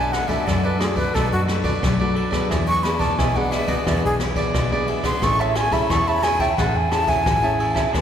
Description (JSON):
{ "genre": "samba and choro", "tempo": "88 BPM", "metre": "4/4", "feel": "straight", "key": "A major", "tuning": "A4 = 440 Hz", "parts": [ { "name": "breathy jazz flute", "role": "melody", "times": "0.0-7.8 s", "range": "F#4 to C#6", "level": "-23 LUFS", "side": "equal", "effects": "none" }, { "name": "cavaquinho", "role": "accompaniment", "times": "0.0-8.0 s", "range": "D4 to A5", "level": "-26 LUFS", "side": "right 3 dB", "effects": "none" }, { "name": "nylon-string guitar", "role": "accompaniment", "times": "0.0-8.0 s", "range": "B2 to A4", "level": "-26 LUFS", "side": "left 3 dB", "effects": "none" }, { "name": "vintage muted fingered electric bass", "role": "bass", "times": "0.0-8.0 s", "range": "A1 to F#2", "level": "-26 LUFS", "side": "equal", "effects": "none" }, { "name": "jazz brush drum kit", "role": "drums", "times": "0.1-8.0 s", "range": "kick drum, ride cymbal, rim click", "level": "-24 LUFS", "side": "equal", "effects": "none" } ], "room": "wet church reverb, RT60 3.6 s", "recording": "recorded in a church or concert hall", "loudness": "-18 LUFS", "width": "side -9 dB against mid", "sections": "0.0-8.0 A section", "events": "flute solo 0.0-8.0", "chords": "0.0 Bm7; 2.5 E7; 5.2 Amaj7" }